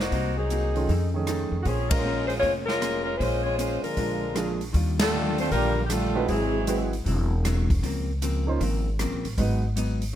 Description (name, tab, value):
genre	jazz, big band swing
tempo	156 BPM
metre	4/4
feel	swing 66% on 8ths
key	Bb minor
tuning	A4 = 440 Hz
part	mellow saxophone section	melody	0.0-6.9 s	F3 to Db5	-27 LUFS	left 1 dB	none
part	upright bass	bass	0.0-10.1 s	E1 to F2	-27 LUFS	equal	none
part	swinging big-band drum kit	drums	0.0-10.1 s	hi-hat, kick drum, ride cymbal, rim click, snare drum	-31 LUFS	equal	none
part	vintage hollow-body jazz guitar	accompaniment	0.1-10.2 s	Ab2 to C5	-32 LUFS	left 2 dB	none
part	warm grand piano	accompaniment	0.8-9.6 s	Eb3 to C5	-31 LUFS	right 6 dB	none
part	warm trombone section	second line	3.8-6.9 s	Bb2 to C4	-31 LUFS	right 2 dB	none
room	light reverb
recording	none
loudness	-23 LUFS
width	side -11 dB against mid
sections	0.0-4.7 A section; 4.7-10.2 B section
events	band accent 1.9, 4.9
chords	0.1 Cm7b5; 0.9 F7alt; 1.7 Bbm9; 4.0 Bb7; 4.7 Ebmaj9; 6.3 Ab7alt; 7.8 Dbmaj13; 9.4 Abm7